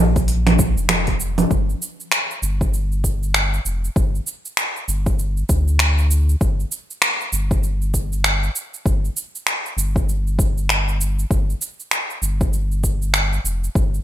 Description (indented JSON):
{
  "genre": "organic downtempo",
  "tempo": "98 BPM",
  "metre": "4/4",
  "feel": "swing 60% on 16ths",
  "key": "unclear",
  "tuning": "A4 = 439 Hz",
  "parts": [
    { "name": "warm sub bass", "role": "bass", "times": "0.0-14.0 s", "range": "F1 to D2", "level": "-20 LUFS", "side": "equal", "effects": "sidechain pumping" },
    { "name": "deep house drum kit", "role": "drums", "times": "0.2-14.0 s", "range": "cabasa, congas, finger snaps, hi-hat", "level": "-20 LUFS", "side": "right 1 dB", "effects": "overdrive, gated reverb" },
    { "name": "electronic kick drum", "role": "drums", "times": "0.2-13.9 s", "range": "none", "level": "-20 LUFS", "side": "equal", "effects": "overdrive" }
  ],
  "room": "little or no reverb",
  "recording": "bright 1980s-style digital production",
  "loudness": "-18 LUFS",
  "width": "side -12 dB against mid",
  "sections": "0.0-1.5 A section; 1.5-14.0 B section",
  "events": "none",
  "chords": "none",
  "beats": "0.28 0.89 | 1.51 2.12 2.73 3.34 | 3.95 4.57 5.18 5.79 | 6.40 7.02 7.63 8.24 | 8.85 9.46 10.08 10.69 | 11.30 11.91 12.53 13.14 | 13.75"
}